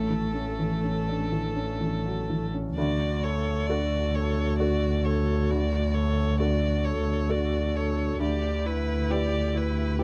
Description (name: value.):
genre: neoclassical piano and strings.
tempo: 61-67 BPM.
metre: 3/4.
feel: rubato.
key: D major.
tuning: A4 = 442 Hz.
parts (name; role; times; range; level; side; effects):
rich violin; melody; 0.0-10.0 s; A4 to D5; -34 LUFS; equal; none.
felt-muted upright piano; accompaniment; 0.0-10.0 s; D2 to B4; -33 LUFS; equal; none.
rich viola; accompaniment; 0.0-10.0 s; A3 to A4; -38 LUFS; equal; none.
rich double bass; bass; 0.0-10.0 s; A1 to D2; -29 LUFS; equal; none.
room: light reverb.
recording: dark, warm production.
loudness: -27 LUFS.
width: mono.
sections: 0.0-2.8 A section; 2.8-10.0 B section.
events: none.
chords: 0.0 A; 2.8 Dmaj7; 8.2 G6/D.